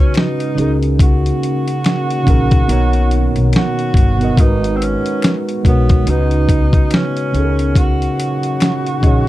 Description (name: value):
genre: lo-fi hip hop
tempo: 71 BPM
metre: 4/4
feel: swing 58% on 16ths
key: unclear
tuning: A4 = 440 Hz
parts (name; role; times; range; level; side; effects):
- breathy tenor saxophone; melody; 0.0-9.3 s; B3 to F#4; -22 LUFS; right 1 dB; analog delay
- mellow tine electric piano; accompaniment; 0.0-9.3 s; B2 to D#5; -18 LUFS; right 2 dB; slow stereo tremolo, cassette tape
- deep dark ambient pad; sustained chords; 0.0-9.3 s; A#2 to A#4; -26 LUFS; left 1 dB; chorus, built-in reverb
- upright bass; bass; 0.0-9.3 s; G1 to C#2; -17 LUFS; left 1 dB; none
- dusty soul sampler-style drum kit; drums; 0.1-9.3 s; hi-hat, kick drum, snare drum; -14 LUFS; equal; none
- finger snaps; percussion; 0.1-8.8 s; none; -31 LUFS; left 7 dB; none
room: light reverb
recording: dark, warm production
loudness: -12 LUFS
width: side -16 dB against mid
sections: 0.0-9.3 A section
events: tine electric piano fill 8.6-9.3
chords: 0.0 C#7sus4; 0.6 F#6/C#; 2.7 Bmaj7; 4.4 G#m7; 6.1 C#7sus4; 7.3 F#6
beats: 0.15 | 0.99 1.84 2.69 3.53 | 4.38 5.22 6.07 6.91 | 7.75 8.60